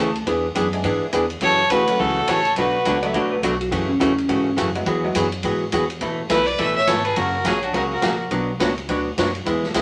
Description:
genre	country, western swing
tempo	209 BPM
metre	4/4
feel	swing 61% on 8ths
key	A major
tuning	A4 = 440 Hz
part	clean lap steel guitar	second line	0.0-0.3, 3.0-4.6 s	C#4 to A5	-26 LUFS	equal	none
part	archtop guitar, miked and amplified	accompaniment	0.0-9.8 s	B2 to C#5	-24 LUFS	equal	none
part	upright bass	bass	0.0-9.8 s	F#1 to G#2	-32 LUFS	equal	none
part	swinging big-band drum kit	drums	0.2-9.8 s	hi-hat, kick drum, ride cymbal, snare drum	-31 LUFS	equal	none
part	tack piano	accompaniment	0.7-5.1 s	F#3 to G#4	-31 LUFS	equal	none
part	clear fiddle	melody	1.4-3.1, 6.3-8.2 s	F#4 to E5	-24 LUFS	equal	none
part	clear fiddle	second line	1.4-3.1, 6.3-8.2 s	C#4 to C#5	-27 LUFS	equal	none
room	moderate studio reverb, RT60 0.6 s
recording	none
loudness	-21 LUFS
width	mono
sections	0.0-6.0 A section; 6.0-9.8 B section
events	none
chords	0.3 E7; 1.4 F#m7; 2.6 Bm7; 3.7 F#m7; 4.9 Eadd9; 6.0 Asus2; 7.2 F#; 8.3 Bmadd9

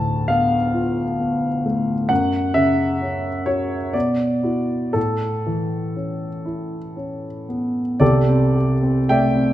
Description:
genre	classical, impressionist solo piano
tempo	53-67 BPM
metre	3/4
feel	rubato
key	A major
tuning	A4 = 440 Hz
part	warm grand piano	solo	0.0-9.5 s	C2 to A5	-18 LUFS	equal	none
room	wet recital hall reverb, RT60 1.8 s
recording	none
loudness	-18 LUFS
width	side -13 dB against mid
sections	0.0-8.0 A section; 8.0-9.5 B section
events	none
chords	0.0 Dm6; 2.1 F#5; 3.9 Bmadd11; 5.0 Aadd9; 8.0 C69

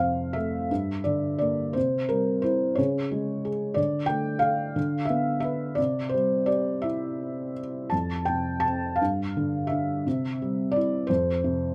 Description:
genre	classical, lyrical solo piano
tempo	55-62 BPM (dotted quarters)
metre	6/8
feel	rubato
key	unclear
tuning	A4 = 440 Hz
part	felt-muted upright piano	solo	0.0-11.7 s	F2 to A5	-26 LUFS	equal	none
room	moderate small room ambience, RT60 0.5 s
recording	none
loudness	-27 LUFS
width	mono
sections	0.0-11.7 A section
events	none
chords	0.0 F; 0.7 Gm; 1.8 C; 2.8 Db5; 3.8 D5; 4.8 Dm69; 5.8 C; 7.9 F5; 9.0 G5; 10.1 C; 11.1 F5

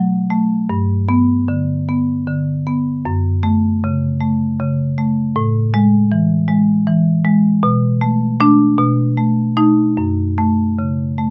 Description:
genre	classical, contemporary piece for solo marimba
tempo	52 BPM (dotted quarters)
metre	6/8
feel	straight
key	F# minor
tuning	A4 = 439 Hz
part	marimba with medium hard mallets	solo	0.0-11.3 s	F#2 to D#4	-16 LUFS	equal	none
room	light reverb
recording	close, detailed microphones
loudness	-16 LUFS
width	mono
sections	0.0-11.3 A section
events	none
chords	0.0 B5; 0.7 G; 3.0 F#m; 5.4 A5; 7.6 Bm7; 8.8 B7; 10.0 F#m

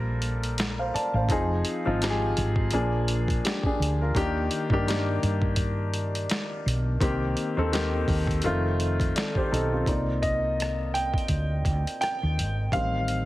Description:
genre	R&B, neo-soul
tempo	84 BPM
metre	4/4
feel	swing 57% on 16ths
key	unclear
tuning	A4 = 439 Hz
part	warm baby grand piano	accompaniment	0.0-13.3 s	Eb3 to A5	-27 LUFS	left 1 dB	none
part	woody fretless electric bass	bass	0.0-13.3 s	F1 to G2	-27 LUFS	equal	analog chorus
part	boom bap sampler-style drum kit	drums	0.2-13.3 s	hi-hat, kick drum, rim click, snare drum	-30 LUFS	equal	none
room	light reverb, digital ambience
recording	heavily compressed radio sound, multiband compression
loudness	-24 LUFS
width	side -16 dB against mid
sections	0.0-9.9 A section; 9.9-13.3 B section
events	grand piano solo 9.9-13.3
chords	0.0 Gm9; 1.3 Fm7; 2.7 Bb7; 4.1 Ebmaj7; 7.0 Cm7; 8.4 F7; 9.9 Cm9; 12.7 Am7b5

